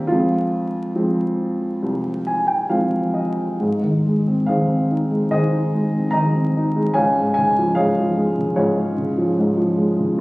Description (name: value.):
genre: classical, lyrical solo piano.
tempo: 66-75 BPM.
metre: 4/4.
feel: rubato.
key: F minor, Ab major from 3.6 s.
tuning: A4 = 440 Hz.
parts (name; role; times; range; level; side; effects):
dark upright piano; solo; 0.0-10.2 s; Bb1 to Bb5; -17 LUFS; equal; none.
room: moderate recital hall reverb, RT60 1.8 s.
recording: recorded on a phone in the room, studio reverb, vinyl crackle.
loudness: -17 LUFS.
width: side -21 dB against mid.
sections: 0.0-3.6 A section; 3.6-10.2 B section.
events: upright piano fill 1.8-3.6.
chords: 0.1 Fm; 3.6 Ab; 7.0 Db.